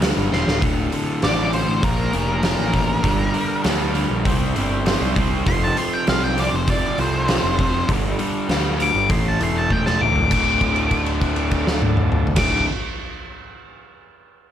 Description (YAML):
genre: blues rock power trio and southern rock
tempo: 99 BPM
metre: 4/4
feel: straight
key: D minor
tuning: A4 = 440 Hz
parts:
  - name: overdriven tonewheel organ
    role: sustained chords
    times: 0.0-12.6 s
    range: A3 to D5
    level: -35 LUFS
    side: right 3 dB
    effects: none
  - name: raw garage guitar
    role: riff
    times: 0.0-12.7 s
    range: D2 to C4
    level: -23 LUFS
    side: equal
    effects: overdrive
  - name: fuzz picked electric bass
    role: bass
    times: 0.0-12.6 s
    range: D1 to D2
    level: -23 LUFS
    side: equal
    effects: overdrive
  - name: oversized low-tuned drum kit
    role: drums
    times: 0.0-12.5 s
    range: crash cymbal, hi-hat, kick drum, snare drum, toms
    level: -22 LUFS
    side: equal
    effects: none
  - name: octave-fuzz lead guitar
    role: melody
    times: 0.3-12.6 s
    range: Bb4 to D6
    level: -23 LUFS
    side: left 1 dB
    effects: distortion
room: little or no reverb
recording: none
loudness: -17 LUFS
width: side -10 dB against mid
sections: 0.0-10.3 A section; 10.3-12.7 B section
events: drum fill 0.3-0.6, 9.7-10.3; held note 10.3-12.4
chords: 0.0 Gm; 0.6 Dm; 1.8 Bb; 3.0 Gm; 4.3 C; 5.5 F; 7.9 Gm; 9.1 Am; 10.3 Dm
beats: 0.02 | 0.62 1.23 1.83 2.44 | 3.04 3.65 4.25 4.86 | 5.46 6.07 6.67 7.28 | 7.88 8.49 9.10 9.70 | 10.31 10.91 11.52 12.13